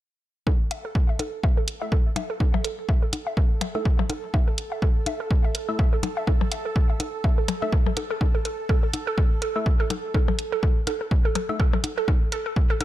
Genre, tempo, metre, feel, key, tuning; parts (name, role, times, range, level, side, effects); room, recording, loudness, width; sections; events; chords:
minimal techno; 124 BPM; 4/4; swing 57% on 16ths; A4 = 438 Hz
hollow square pluck; riff; 0.5-12.8 s; A4 to E5; -31 LUFS; right 2 dB; chorus, sidechain pumping, digital delay
electronic kick drum; drums; 0.5-12.7 s; -21 LUFS; equal
percussion blips; percussion; 0.5-12.8 s; -31 LUFS; left 5 dB; dub echo
bubbling stepped-filter texture; texture; 0.8-12.8 s; A4; -36 LUFS; right 5 dB; chorus, built-in reverb, sidechain pumping
electronic hi-hat; drums; 0.7-12.8 s; -31 LUFS; right 1 dB
wavetable chord stab; stabs; 1.8-11.6 s; A3 to E5; -32 LUFS; left 3 dB; dub echo
little or no reverb; -21 LUFS; side -14 dB against mid
0.5-12.8 A section
filter sweep on synth stab 0.5-12.8
0.5 A5